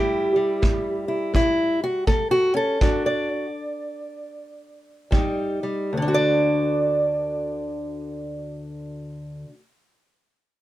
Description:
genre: acoustic country blues, solo or duo.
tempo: 73-84 BPM.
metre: 4/4.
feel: swing 62% on 8ths.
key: D major.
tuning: A4 = 443 Hz.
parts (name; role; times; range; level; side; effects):
fingerpicked steel-string acoustic guitar; melody; 0.0-9.6 s; D2 to D5; -22 LUFS; equal; none.
kick drum; drums; 0.6-5.4 s; none; -22 LUFS; right 1 dB; none.
room: light reverb.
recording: none.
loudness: -20 LUFS.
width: side -15 dB against mid.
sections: 0.0-5.9 A section; 5.9-9.2 B section.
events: slowing down 0.0-5.9; stop 2.8-5.1.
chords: 0.0 A7(no3); 2.8 D; 5.1 Eb; 5.9 D.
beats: 0.63 1.35 2.08 | 2.81 3.57 4.33 5.12 | 5.93 6.75 7.58 8.40.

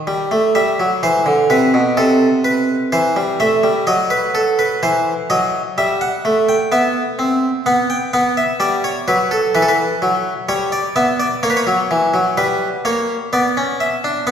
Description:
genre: classical, baroque-style two-part invention for harpsichord.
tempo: 63 BPM.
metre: 4/4.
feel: straight.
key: E minor.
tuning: A4 = 440 Hz.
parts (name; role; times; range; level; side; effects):
harpsichord; solo; 0.1-14.3 s; B2 to G5; -14 LUFS; equal; none.
room: wet concert hall reverb, RT60 2.3 s.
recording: recorded in a church or concert hall.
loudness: -14 LUFS.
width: side -8 dB against mid.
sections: 0.1-14.3 A section.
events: none.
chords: 0.1 Em; 2.0 Am/C; 3.9 B/F#; 5.8 Em/G; 7.7 Bm; 9.5 Em; 11.4 F#; 13.3 Bm.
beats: | 0.07 1.03 1.98 2.93 | 3.88 4.82 5.77 6.72 | 7.66 8.61 9.55 10.49 | 11.44 12.38 13.33 14.28.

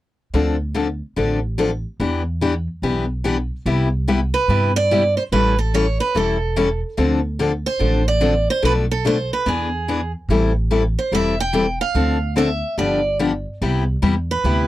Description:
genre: acoustic string swing (jazz manouche).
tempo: 145 BPM.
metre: 4/4.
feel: swing 63% on 8ths.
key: unclear.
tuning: A4 = 441 Hz.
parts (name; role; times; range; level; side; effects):
picked steel-string acoustic guitar; accompaniment; 0.3-14.7 s; B2 to A4; -20 LUFS; left 3 dB; none.
upright bass; bass; 0.3-14.7 s; E1 to G2; -21 LUFS; right 1 dB; none.
picked steel-string acoustic guitar; melody; 4.3-14.7 s; G#4 to G5; -21 LUFS; right 3 dB; none.
room: little or no reverb.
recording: dry, close 1970s-style studio recording.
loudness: -17 LUFS.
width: side -15 dB against mid.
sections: 0.3-3.7 A section; 3.7-14.7 B section.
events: none.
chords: 0.3 Dm7; 2.0 Em7; 3.7 Cmaj7; 5.3 A7; 7.0 Dm7; 8.6 Bm7b5; 9.5 E7; 10.3 Am7; 12.0 Dm7; 12.8 G7; 13.6 Cmaj7.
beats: | 0.33 0.75 1.17 1.58 | 2.00 2.41 2.83 3.24 | 3.66 4.07 4.49 4.90 | 5.32 5.73 6.15 6.56 | 6.98 7.39 7.81 8.22 | 8.64 9.05 9.46 9.88 | 10.29 10.71 11.12 11.54 | 11.95 12.37 12.78 13.20 | 13.61 14.03 14.44.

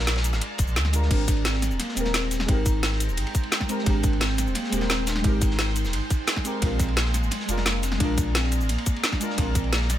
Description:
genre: liquid drum and bass.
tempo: 174 BPM.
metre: 4/4.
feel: straight.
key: Ab lydian.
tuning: A4 = 442 Hz.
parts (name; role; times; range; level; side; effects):
hollow clarinet-like synth lead; melody; 0.0-10.0 s; Ab3 to Eb4; -32 LUFS; right 1 dB; analog chorus, tape echo.
deep mellow chord stab; accompaniment; 0.0-10.0 s; Ab3 to Bb4; -31 LUFS; equal; chorus, digital delay.
shimmering ambient pad; sustained chords; 0.0-10.0 s; Ab3 to C6; -35 LUFS; equal; chorus, built-in reverb, sidechain pumping.
saturated sub bass; bass; 0.0-10.0 s; Eb1 to D2; -25 LUFS; equal; tube saturation.
crunchy breakbeat drum kit; drums; 0.1-10.0 s; ride cymbal, snare drum; -34 LUFS; equal; high-pass filter on cymbals, studio reverb, high-pass filter on snare, high-pass filter on room.
garage drum kit; drums; 0.1-10.0 s; crash cymbal, hi-hat, ride cymbal, shaker, snare drum; -28 LUFS; equal; studio reverb.
electronic kick drum; drums; 0.6-9.6 s; none; -24 LUFS; equal; studio reverb.
room: digital ambience.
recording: none.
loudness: -22 LUFS.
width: side -12 dB against mid.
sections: 0.0-10.0 A section.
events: kick drops out 0.8-1.1.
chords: 0.0 Bb7; 1.1 Abmaj9; 6.6 Bb7.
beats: 0.07 0.42 0.76 | 1.11 1.45 1.80 2.14 | 2.49 2.83 3.18 3.52 | 3.87 4.21 4.55 4.90 | 5.25 5.59 5.93 6.28 | 6.62 6.97 7.31 7.66 | 8.00 8.35 8.69 9.04 | 9.38 9.73.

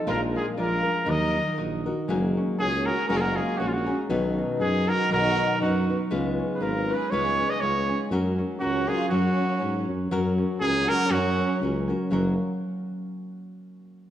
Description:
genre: mexican folk, mariachi.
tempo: 120 BPM.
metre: 2/4.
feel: swing 55% on 8ths.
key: F# major.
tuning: A4 = 440 Hz.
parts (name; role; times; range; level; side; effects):
nylon-string guitar; accompaniment; 0.0-12.3 s; Bb2 to B4; -29 LUFS; left 3 dB; none.
concert harp; arpeggios; 0.0-12.4 s; Eb3 to Eb6; -30 LUFS; right 1 dB; none.
clear trumpet; melody; 0.1-11.6 s; E#4 to Eb5; -27 LUFS; right 1 dB; none.
warm symphonic violin section; second line; 0.1-11.6 s; C#4 to B4; -33 LUFS; right 3 dB; none.
mellow tuba; bass; 0.1-12.4 s; F#1 to G#2; -29 LUFS; equal; none.
room: wet scoring stage reverb, RT60 1.8 s.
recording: dark, warm production.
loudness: -22 LUFS.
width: side -11 dB against mid.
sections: 0.0-2.1 A section; 2.1-10.1 B section; 10.1-12.1 C section.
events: none.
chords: 0.1 Bb7; 1.1 Ebm; 2.1 F#add9; 4.1 B; 6.1 C#7; 8.1 F#.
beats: | 0.07 0.57 | 1.07 1.58 | 2.09 2.59 | 3.10 3.60 | 4.10 4.60 | 5.10 5.61 | 6.11 6.61 | 7.12 7.62 | 8.12 8.62 | 9.11 9.61 | 10.12 10.62 | 11.11 11.61 | 12.11.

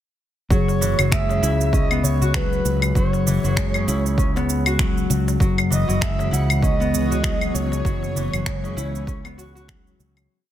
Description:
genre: organic downtempo.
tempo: 98 BPM.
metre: 4/4.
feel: swing 57% on 16ths.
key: unclear.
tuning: A4 = 440 Hz.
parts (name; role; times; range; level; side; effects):
breathy flute-like synth lead; melody; 0.5-10.0 s; B4 to F#5; -27 LUFS; right 2 dB; lush chorus, digital delay.
Celtic harp; arpeggios; 0.5-10.5 s; C#3 to F#4; -26 LUFS; left 3 dB; digital delay.
fretless electric bass; bass; 0.5-10.3 s; F#1 to C#2; -22 LUFS; equal; none.
electronic kick drum; drums; 0.5-9.8 s; none; -23 LUFS; equal; none.
electronic shaker, claves and finger snaps; drums; 0.5-10.3 s; none; -26 LUFS; right 1 dB; soft clipping on snare.
bronze singing bowl; texture; 0.5-10.3 s; G#4; -36 LUFS; left 2 dB; none.
darbuka; percussion; 0.7-10.3 s; none; -28 LUFS; left 3 dB; none.
granular cloud pad; sustained chords; 6.5-10.3 s; E3 to C#5; -30 LUFS; right 2 dB; built-in reverb, sidechain pumping.
room: light reverb.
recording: dense, heavily limited modern master.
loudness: -18 LUFS.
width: side -12 dB against mid.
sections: 0.5-10.3 groove.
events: fade-out 7.0-10.3.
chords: 0.5 F#9sus4.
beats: | 0.51 1.12 1.73 2.35 | 2.96 3.57 4.18 4.79 | 5.41 6.02 6.63 7.24 | 7.86 8.47 9.08 9.69.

